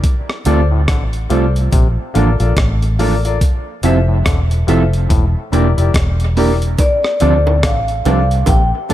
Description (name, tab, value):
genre	dub reggae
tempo	71 BPM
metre	4/4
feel	swing 60% on 16ths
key	D minor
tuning	A4 = 437 Hz
part	breakbeat sampler-style drum kit	drums	0.0-8.9 s	hi-hat, kick drum, rim click	-17 LUFS	equal	none
part	mellow electric guitar	accompaniment	0.5-8.9 s	F3 to Bb4	-21 LUFS	right 7 dB	lush chorus, dub echo
part	mellow clav	arpeggios	0.5-8.9 s	A2 to D3	-26 LUFS	left 6 dB	phaser, dub echo
part	clear upright piano	stabs	0.5-8.9 s	E4 to E5	-22 LUFS	left 7 dB	dub echo
part	vintage muted fingered electric bass	bass	0.5-8.9 s	E1 to D2	-14 LUFS	equal	none
part	vibraphone with medium mallets	melody	6.8-8.9 s	D5 to A5	-17 LUFS	left 1 dB	dub echo
part	bongos	percussion	6.8-8.7 s	none	-25 LUFS	right 6 dB	dub echo
room	small room reverb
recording	none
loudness	-12 LUFS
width	side -13 dB against mid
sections	0.0-8.9 A section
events	break 0.0-6.8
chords	0.0 Dm7; 1.7 Bbmaj7; 3.4 Fmaj7; 5.1 Em7b5; 6.8 Dm7